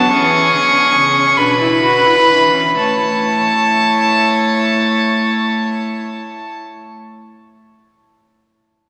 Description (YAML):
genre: classical, baroque-style fugue for string quartet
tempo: 40-50 BPM (dotted quarters)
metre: 6/8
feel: straight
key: A major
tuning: A4 = 440 Hz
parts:
  - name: rich violin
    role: melody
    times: 0.0-6.5 s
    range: A5 to C#6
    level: -16 LUFS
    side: equal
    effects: none
  - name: warm violin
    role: second line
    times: 0.0-6.5 s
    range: F#4 to C#5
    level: -20 LUFS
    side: equal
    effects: none
  - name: warm viola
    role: accompaniment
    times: 0.0-6.5 s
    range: B3 to F#4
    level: -24 LUFS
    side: equal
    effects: none
  - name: rich cello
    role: bass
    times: 0.0-6.5 s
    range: B2 to A3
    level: -23 LUFS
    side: equal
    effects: none
room: wet church reverb, RT60 3.3 s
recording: none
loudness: -13 LUFS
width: mono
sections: 0.0-2.8 A section; 2.8-8.7 B section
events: slowing down 0.0-2.8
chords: 0.1 E7; 2.8 A